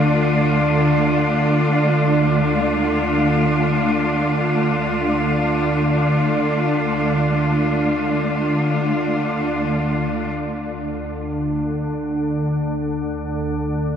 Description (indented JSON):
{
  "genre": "dark ambient drone",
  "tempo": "free time",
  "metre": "none",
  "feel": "none",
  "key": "unclear",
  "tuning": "A4 = 444 Hz",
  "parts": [
    { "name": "rich studio cello section", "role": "sustained chords", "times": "0.0-10.3 s", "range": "D3 to F4", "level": "-20 LUFS", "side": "left 1 dB", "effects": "none" },
    { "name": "organ-like drone", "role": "drone", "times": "0.0-14.0 s", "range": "D2 to D3", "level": "-20 LUFS", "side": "right 1 dB", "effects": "ensemble chorus, built-in reverb" }
  ],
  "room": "wet huge ambient reverb, RT60 8.3 s",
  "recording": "nothing above 11.0 kHz",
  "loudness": "-17 LUFS",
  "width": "side -8 dB against mid",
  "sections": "0.0-10.3 A section; 10.3-14.0 B section",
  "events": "none",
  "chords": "0.0 Dm; 10.3 N.C."
}